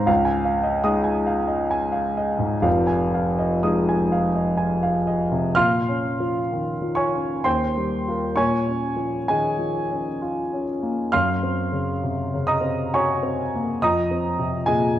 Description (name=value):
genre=classical, impressionist solo piano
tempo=59-81 BPM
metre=3/4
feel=rubato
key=Bb minor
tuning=A4 = 441 Hz
part: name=warm grand piano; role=solo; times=0.0-15.0 s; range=F1 to F6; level=-20 LUFS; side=equal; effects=none
room=wet recital hall reverb, RT60 1.6 s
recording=dark, warm production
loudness=-20 LUFS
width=side -12 dB against mid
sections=0.0-5.6 A section; 5.6-15.0 B section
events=none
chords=0.1 Dbadd9; 2.7 Fm7; 5.6 Bbm7; 7.5 Eb69; 8.4 Bbm7; 11.1 Gbmaj7#11; 13.8 Fm7